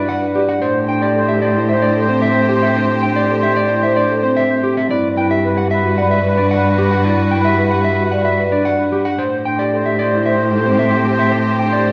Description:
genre	classical, minimalist pattern music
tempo	112 BPM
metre	4/4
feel	straight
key	A dorian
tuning	A4 = 439 Hz
part	electric guitar at the edge of break-up	melody	0.0-11.9 s	G4 to G5	-22 LUFS	equal	none
part	clear oboe	second line	0.0-11.9 s	B4 to C5	-24 LUFS	equal	none
part	rich symphonic violin section	sustained chords	0.0-11.9 s	F#4 to C5	-28 LUFS	equal	none
part	marimba with soft mallets	arpeggios	0.0-11.9 s	C4 to D5	-21 LUFS	equal	none
part	rich cello	bass	0.0-11.9 s	G2 to A2	-22 LUFS	equal	none
room	wet recital hall reverb, RT60 1.3 s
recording	none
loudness	-16 LUFS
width	mono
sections	0.0-11.9 A section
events	none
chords	0.0 Gmaj7; 0.6 Am7; 4.9 Gmaj7; 9.2 Am7

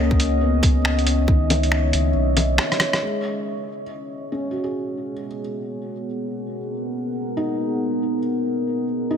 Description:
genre	future garage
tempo	138 BPM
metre	4/4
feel	swing 62% on 16ths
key	G# minor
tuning	A4 = 440 Hz
part	felt-muted upright piano	accompaniment	0.0-9.2 s	D#3 to G#4	-27 LUFS	left 1 dB	sidechain pumping, tape echo
part	deep dark ambient pad	sustained chords	0.0-9.2 s	B3 to F#5	-25 LUFS	left 1 dB	chorus, built-in reverb, sidechain pumping
part	warm sub bass	bass	0.0-2.6 s	B1 to C#2	-20 LUFS	equal	sidechain pumping
part	electronic kick drum	drums	0.1-1.4 s	none	-18 LUFS	equal	none
part	lo-fi sampler-style drum kit	drums	0.2-3.0 s	bongos, finger snaps, hi-hat, rim click	-22 LUFS	equal	none
room	light reverb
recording	none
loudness	-20 LUFS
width	side -8 dB against mid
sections	0.0-3.0 A section; 3.0-9.2 B section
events	drum fill 2.6-3.0; filter sweep on ambient pad 3.0-9.2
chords	0.0 C#m9; 3.0 G#m9

